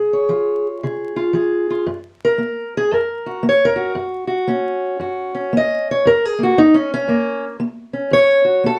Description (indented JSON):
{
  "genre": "acoustic country blues, solo or duo",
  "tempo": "116 BPM",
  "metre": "4/4",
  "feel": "swing 64% on 8ths",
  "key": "F# major",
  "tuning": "A4 = 440 Hz",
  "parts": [
    { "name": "fingerpicked steel-string acoustic guitar", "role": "solo", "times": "0.0-8.8 s", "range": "F#2 to D#5", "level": "-18 LUFS", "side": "equal", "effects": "slapback echo" }
  ],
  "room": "light reverb",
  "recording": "dark, warm production, vinyl crackle",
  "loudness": "-18 LUFS",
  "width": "mono",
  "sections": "0.0-1.9 A section; 1.9-8.8 B section",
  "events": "steel-string acoustic guitar solo 1.9-8.8",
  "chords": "0.0 C#; 1.9 F#"
}